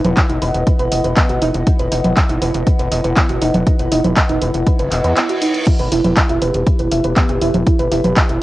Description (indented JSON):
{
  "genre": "melodic techno",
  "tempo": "120 BPM",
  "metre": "4/4",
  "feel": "straight",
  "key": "unclear",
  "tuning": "A4 = 444 Hz",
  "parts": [
    { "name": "dark analog pad", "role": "sustained chords", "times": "0.0-8.4 s", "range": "E4 to F#5", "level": "-22 LUFS", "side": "equal", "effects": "chorus, phaser, sidechain pumping, cassette tape" },
    { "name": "woody wave-folded pluck", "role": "arpeggios", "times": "0.0-8.4 s", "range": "B3 to E6", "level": "-21 LUFS", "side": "right 2 dB", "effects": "lush chorus, sidechain pumping, cassette tape, tape echo" },
    { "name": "gritty driven synth bass", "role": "bass", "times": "0.0-8.4 s", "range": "E1 to E2", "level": "-20 LUFS", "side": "equal", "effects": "sidechain pumping" },
    { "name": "punchy analog drum machine", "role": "drums", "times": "0.0-8.4 s", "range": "congas, crash cymbal, handclaps, hi-hat", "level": "-19 LUFS", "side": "equal", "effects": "cassette tape" },
    { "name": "electronic kick drum", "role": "drums", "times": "0.2-8.3 s", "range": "none", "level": "-14 LUFS", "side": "equal", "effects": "overdrive, cassette tape" },
    { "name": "reverse cymbal", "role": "sound effects", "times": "4.9-5.7 s", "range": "none", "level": "-26 LUFS", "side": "right 2 dB", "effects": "none" }
  ],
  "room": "light reverb",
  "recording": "home recording on cassette, nothing above 10.4 kHz",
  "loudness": "-13 LUFS",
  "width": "side -16 dB against mid",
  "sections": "0.0-8.4 A section",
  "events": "reverse cymbal 4.9-5.7",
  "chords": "0.0 B/E; 5.7 Em",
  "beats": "0.17 0.67 1.17 | 1.67 2.17 2.67 3.17 | 3.67 4.17 4.67 5.17 | 5.67 6.17 6.67 7.17 | 7.67 8.17"
}